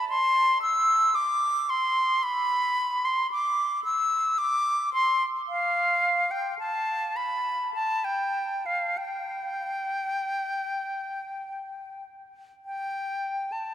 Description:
classical, baroque-style fantasia for unaccompanied flute; 47-56 BPM; 3/4; rubato; A4 = 440 Hz
silver concert flute; solo; 0.0-13.7 s; F5 to E6; -24 LUFS; equal
wet cathedral reverb, RT60 5.5 s; -24 LUFS; side -11 dB against mid
0.0-12.7 A section; 12.7-13.7 B section
0.07 1.15 | 2.24 3.32 4.42 | 5.52 6.62 7.77 | 9.00 10.24 11.45 | 12.65

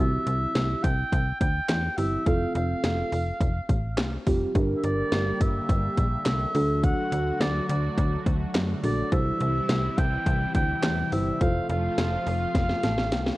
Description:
synth-pop; 105 BPM; 4/4; straight; A4 = 438 Hz
warm oboe; melody; 0.0-13.4 s; D5 to G5; -30 LUFS; equal
muted felt-like synth keys; accompaniment; 0.0-13.4 s; C4 to A5; -30 LUFS; right 1 dB; chorus
slap-like FM bass; bass; 0.0-13.3 s; F1 to F#2; -28 LUFS; equal
house drum kit; drums; 0.3-13.4 s; handclaps, hi-hat, kick drum, snare drum; -26 LUFS; equal
lush unison pad; sustained chords; 4.6-13.4 s; C3 to G4; -33 LUFS; equal; chorus, phaser
light reverb, digital ambience; worn, warbling old tape, cassette tape, warbly pitch drift; -23 LUFS; side -18 dB against mid
0.0-13.4 A section
drum fill 12.6-13.4; synth keys fill 12.6-13.4
0.0 C; 2.3 F; 4.6 Gm; 6.6 D; 9.1 C; 11.4 F
0.55 1.12 1.69 | 2.27 2.84 3.41 3.98 | 4.55 5.12 5.69 6.26 | 6.84 7.41 7.98 8.55 | 9.12 9.69 10.27 10.84 | 11.41 11.98 12.55 13.12

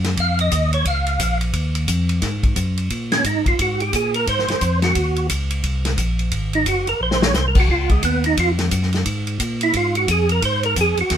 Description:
soul jazz organ trio; 176 BPM; 4/4; swing 62% on 8ths; Ab mixolydian; A4 = 440 Hz
tonewheel organ; bass; 0.0-11.2 s; Gb1 to Bb2; -21 LUFS; equal
warm soul drum kit; drums; 0.0-11.2 s; crash cymbal, hi-hat, kick drum, ride cymbal, snare drum; -22 LUFS; left 1 dB
percussive tonewheel organ; melody; 0.2-11.2 s; Ab3 to F5; -19 LUFS; right 2 dB; slow rotary speaker, chorus vibrato
light reverb; minimal, uncompressed stereo recording; -17 LUFS; side -9 dB against mid
0.0-2.2 A section; 2.2-11.2 A section
tonewheel organ solo 0.0-2.2, 2.2-11.2; drum fill 7.0-7.3
0.2 Dbadd9; 0.9 Bbm; 1.5 Ebsus2; 2.2 Ab9; 7.7 Dbadd9; 10.4 Ab9
0.17 0.51 | 0.85 1.20 1.54 1.88 | 2.22 2.56 2.90 3.25 | 3.59 3.93 4.27 4.61 | 4.96 5.30 5.64 5.98 | 6.32 6.66 7.01 7.35 | 7.69 8.03 8.37 8.71 | 9.05 9.40 9.74 10.08 | 10.42 10.76 11.11

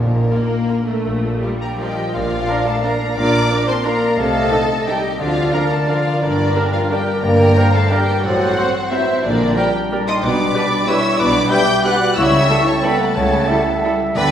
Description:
classical, orchestral ballroom waltz; 152-198 BPM; 3/4; rubato; Bb major; A4 = 440 Hz
dark studio violin section; melody; 0.0-14.3 s; Bb4 to G6; -23 LUFS; left 2 dB
mellow French horn section; sustained chords; 0.0-14.3 s; D3 to G4; -23 LUFS; equal
concert harp; arpeggios; 0.0-14.3 s; G2 to F5; -24 LUFS; left 2 dB
rich studio double bass section; bass; 0.0-14.3 s; G1 to D2; -25 LUFS; right 1 dB
warm studio cello section; bass; 0.0-14.3 s; G2 to D3; -23 LUFS; right 1 dB
timpani; percussion; 0.0-0.5, 14.2-14.3 s; Bb2 to D3; -24 LUFS; equal
dark studio violin section; second line; 0.3-14.3 s; D4 to G5; -23 LUFS; equal
rich studio viola section; accompaniment; 0.3-13.9 s; F3 to Bb4; -27 LUFS; equal
flute section; second line; 1.6-14.3 s; Bb4 to D6; -24 LUFS; equal
mellow clarinet; second line; 2.5-14.3 s; A4 to F5; -24 LUFS; right 1 dB
warm trombone section; sustained chords; 2.5-13.9 s; Eb3 to E4; -28 LUFS; right 2 dB
mellow trumpet; stabs; 2.5-13.9 s; A4 to C5; -27 LUFS; right 1 dB
wet recital hall reverb, RT60 1.6 s; recorded in a church or concert hall; -14 LUFS; side -9 dB against mid
0.0-2.1 A section; 2.1-14.3 B section
0.0 Bb; 4.2 Adim/C; 5.2 Bb/D; 6.2 Gm; 8.2 F#dim/A; 9.2 Gm/Bb; 10.2 G/B; 12.2 A7/C#
0.32 0.71 | 1.06 1.42 1.79 | 2.14 2.48 2.83 | 3.16 3.50 3.85 | 4.18 4.52 4.87 | 5.20 5.53 5.89 | 6.22 6.56 6.90 | 7.23 7.57 7.92 | 8.24 8.57 8.92 | 9.24 9.56 9.91 | 10.22 10.54 10.87 | 11.19 11.51 11.85 | 12.17 12.49 12.83 | 13.15 13.48 13.83 | 14.15

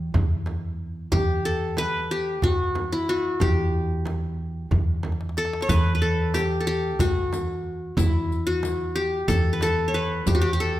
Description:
Turkish makam ensemble; 184 BPM (eighths); 7/8; straight; E makam huseyni; A4 = 440 Hz
qanun; melody; 0.0-10.8 s; E4 to C#5-30c; -25 LUFS; left 2 dB
upright bass; bass; 0.0-10.8 s; B1 to E2; -26 LUFS; right 1 dB
darbuka; percussion; 0.1-10.7 s; -29 LUFS; left 1 dB
frame drum; percussion; 0.1-10.4 s; -30 LUFS; right 2 dB
riq; percussion; 5.7-10.7 s; -37 LUFS; left 6 dB
moderate recital hall reverb, RT60 1.3 s; -22 LUFS; side -14 dB against mid
0.0-10.8 A section
drum fill 5.0-5.7
0.15 0.47 0.80 | 1.13 1.45 1.78 2.11 2.43 2.76 3.08 | 3.41 3.74 4.06 4.39 4.72 5.04 5.37 | 5.70 6.02 6.35 6.68 7.00 7.33 7.66 | 7.98 8.31 8.63 8.96 9.29 9.62 9.94 | 10.27 10.59

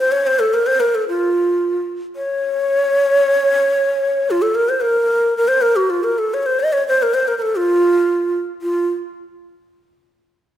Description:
Arabic maqam ensemble; 111 BPM; 4/4; straight; F maqam hijaz; A4 = 440 Hz
breathy bright low ney; solo; 0.0-8.9 s; F4 to Eb5; -15 LUFS; equal
moderate scoring stage reverb, RT60 1.6 s; -15 LUFS; side -11 dB against mid
0.0-8.6 A section; 8.6-10.6 B section
0.52 1.06 1.60 | 2.14 2.68 3.22 3.76 | 4.30 4.84 5.38 5.92 | 6.46 7.00 7.54 8.08 | 8.62

